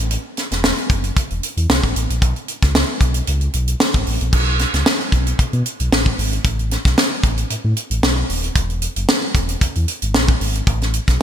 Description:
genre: polished 1980s jazz-funk pop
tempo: 114 BPM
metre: 4/4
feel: swing 54% on 16ths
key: unclear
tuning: A4 = 439 Hz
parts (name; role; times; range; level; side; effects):
- sub bass with octave; bass; 0.0-11.2 s; D#1 to B2; -20 LUFS; equal; none
- tight funk drum kit; drums; 0.1-11.2 s; crash cymbal, hi-hat, kick drum, snare drum; -17 LUFS; equal; none
room: light reverb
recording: bright 1980s-style digital production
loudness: -16 LUFS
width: side -9 dB against mid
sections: 0.0-4.3 A section; 4.3-11.2 B section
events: none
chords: none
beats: | 0.11 0.64 1.17 1.69 | 2.22 2.75 3.28 3.80 | 4.33 4.86 5.39 5.92 | 6.44 6.97 7.50 8.03 | 8.56 9.09 9.61 10.14 | 10.67

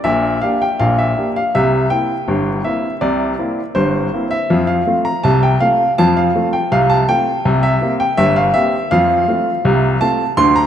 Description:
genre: ragtime piano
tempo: 81 BPM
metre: 2/4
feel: straight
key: F major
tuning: A4 = 440 Hz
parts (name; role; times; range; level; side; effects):
- clear baby grand piano; solo; 0.0-10.7 s; G1 to C6; -13 LUFS; equal; none
room: wet plate reverb, RT60 2.6 s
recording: rough home demo mix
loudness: -13 LUFS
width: side -9 dB against mid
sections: 0.0-10.7 A section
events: none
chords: 0.0 Gm/Bb; 1.5 C7; 4.5 F; 7.4 C5; 8.9 F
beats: | 0.05 0.79 | 1.53 2.27 | 3.01 3.75 | 4.48 5.22 | 5.96 6.70 | 7.44 8.18 | 8.91 9.65 | 10.39

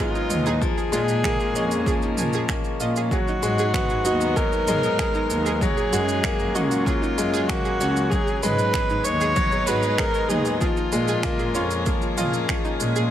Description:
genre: piano and strings electronica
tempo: 96 BPM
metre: 4/4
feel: straight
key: unclear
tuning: A4 = 440 Hz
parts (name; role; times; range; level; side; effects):
- warm viola; melody; 0.0-12.4 s; D#4 to C#5; -26 LUFS; right 1 dB; none
- warm string quartet; sustained chords; 0.0-13.1 s; E#3 to G#4; -32 LUFS; left 1 dB; sidechain pumping
- analog pluck; arpeggios; 0.0-13.0 s; D#4 to G#5; -32 LUFS; right 5 dB; chorus, sidechain pumping, digital delay
- bright grand piano; riff; 0.0-13.1 s; E#3 to E#4; -26 LUFS; left 3 dB; digital delay
- deep house drum kit; drums; 0.2-13.1 s; finger snaps, shaker, toms; -30 LUFS; right 2 dB; overdrive, studio ambience
- dark studio cello section; bass; 0.3-13.0 s; C#2 to A#2; -28 LUFS; equal; sidechain pumping
- electronic kick drum; drums; 0.6-12.6 s; none; -27 LUFS; equal; overdrive, studio ambience
room: light reverb, small room ambience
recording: none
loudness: -20 LUFS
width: side -11 dB against mid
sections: 0.0-13.1 A section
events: none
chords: 0.0 G#m7; 0.6 A#m7; 3.1 G#m7; 5.6 F#add9; 8.1 G#m7; 10.6 A#m7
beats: | 0.61 1.24 1.86 2.49 | 3.11 3.74 4.36 4.99 | 5.61 6.24 6.86 7.49 | 8.11 8.74 9.36 9.99 | 10.61 11.24 11.86 12.49

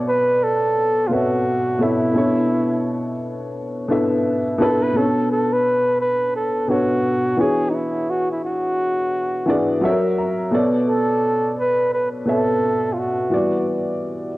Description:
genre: hip hop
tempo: 86 BPM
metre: 4/4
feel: swing 61% on 16ths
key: B minor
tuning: A4 = 440 Hz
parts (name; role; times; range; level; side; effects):
- dark upright piano; accompaniment; 0.0-14.4 s; B2 to A#5; -20 LUFS; equal; cassette tape, low-pass filter
- breathy flugelhorn; melody; 0.1-13.7 s; D#4 to B4; -20 LUFS; right 1 dB; low-pass filter, cassette tape
room: moderate spring reverb, RT60 1.7 s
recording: home recording on cassette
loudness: -17 LUFS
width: side -18 dB against mid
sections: 0.0-4.9 A section; 4.9-14.4 B section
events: upright piano fill 9.1-10.5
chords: 0.0 Bm11; 4.9 Bm9; 7.4 E13; 9.8 F#7; 10.5 Bm9; 13.3 Em9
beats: 0.06 0.76 1.46 | 2.15 2.85 3.55 4.25 | 4.95 5.64 6.34 7.04 | 7.74 8.43 9.13 9.83 | 10.53 11.22 11.92 12.62 | 13.32 14.02

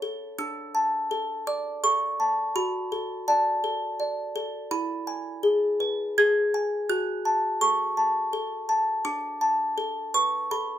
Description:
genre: classical, lullaby for music box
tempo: 83 BPM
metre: 3/4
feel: rubato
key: unclear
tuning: A4 = 440 Hz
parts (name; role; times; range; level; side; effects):
- music box; solo; 0.0-10.8 s; C#4 to G#6; -24 LUFS; equal; none
room: moderate studio reverb, RT60 0.6 s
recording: none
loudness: -24 LUFS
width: side -11 dB against mid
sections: 0.0-10.8 A section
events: none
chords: 0.4 D5; 2.6 D/F#; 4.7 E; 6.9 F#m; 9.0 Bm7/D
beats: | 0.38 1.10 1.83 | 2.56 3.28 4.00 | 4.71 5.43 6.18 | 6.89 7.61 8.32 | 9.05 9.77 10.51

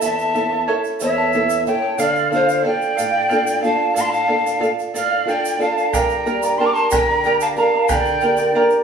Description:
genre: andean folk, Andean ensemble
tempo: 61 BPM (dotted quarters)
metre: 6/8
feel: straight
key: D harmonic minor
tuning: A4 = 441 Hz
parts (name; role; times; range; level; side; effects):
- quena; melody; 0.0-8.6 s; E5 to D6; -20 LUFS; right 2 dB; none
- breathy pan flute; second line; 0.0-8.6 s; C5 to Bb5; -23 LUFS; left 2 dB; none
- charango; accompaniment; 0.0-8.8 s; E4 to Bb5; -21 LUFS; right 4 dB; none
- nylon-string guitar; accompaniment; 0.0-8.8 s; E2 to Bb4; -23 LUFS; left 1 dB; none
- tube shaker; percussion; 0.0-8.8 s; none; -34 LUFS; right 5 dB; none
- bombo; percussion; 5.9-8.8 s; none; -25 LUFS; right 1 dB; none
room: wet stone room reverb, RT60 1.2 s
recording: band playing live in one room, small room ambience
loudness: -16 LUFS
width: side -6 dB against mid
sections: 0.0-8.8 A section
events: none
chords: 0.0 A; 2.0 Dm; 5.9 Gm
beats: | 0.01 1.00 | 1.99 2.98 | 3.96 4.95 | 5.93 6.91 | 7.89

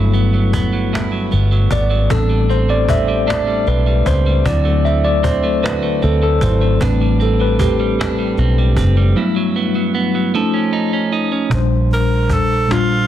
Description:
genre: slow six-eight R&B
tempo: 51 BPM (dotted quarters)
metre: 6/8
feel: straight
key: A dorian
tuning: A4 = 440 Hz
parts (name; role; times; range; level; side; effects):
- clean electric guitar; second line; 0.0-12.1 s; G2 to A4; -21 LUFS; right 4 dB; none
- mellow tine electric piano; accompaniment; 0.0-13.1 s; Bb2 to E5; -18 LUFS; left 2 dB; medium stereo tremolo
- vintage muted fingered electric bass; bass; 0.0-13.0 s; F#1 to D2; -16 LUFS; equal; none
- cajon; drums; 0.1-12.9 s; none; -22 LUFS; equal; none
- breathy tenor saxophone; melody; 11.9-13.1 s; F4 to Bb4; -18 LUFS; right 1 dB; none
room: small room ambience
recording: dense, heavily limited modern master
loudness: -13 LUFS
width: side -11 dB against mid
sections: 0.0-11.5 A section; 11.5-13.1 B section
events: tine electric piano solo 0.0-11.5; break 9.2-11.5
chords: 0.0 Gmaj13; 2.1 Am11; 4.5 D7; 6.8 Am11; 9.2 Gmaj13; 10.3 Faug7; 11.5 Bb69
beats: 0.93 | 2.10 3.28 | 4.46 5.63 | 6.81 7.99 | 9.16 10.34 | 11.51 12.69

